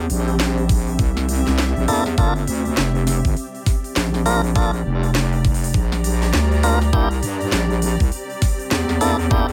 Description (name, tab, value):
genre	glitch hop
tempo	101 BPM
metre	4/4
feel	swing 60% on 16ths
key	G dorian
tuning	A4 = 440 Hz
part	wobble bass	bass	0.0-9.5 s	F1 to G2	-22 LUFS	equal	chorus, overdrive
part	granular cloud pad	texture	0.0-9.5 s	C4 to Bb5	-29 LUFS	equal	built-in reverb, sidechain pumping
part	drum and bass drum kit	drums	0.1-9.5 s	hi-hat, snare drum	-28 LUFS	equal	none
part	electronic kick drum	drums	0.7-9.5 s	none	-21 LUFS	equal	none
part	tonewheel organ	stabs	1.9-9.5 s	Bb3 to Bb4	-24 LUFS	equal	overdrive, vintage 12-bit sampler grit, sidechain pumping, digital delay
room	light reverb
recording	none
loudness	-19 LUFS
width	mono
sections	0.0-9.5 A section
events	none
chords	0.0 C7; 2.2 Gm7; 6.9 C7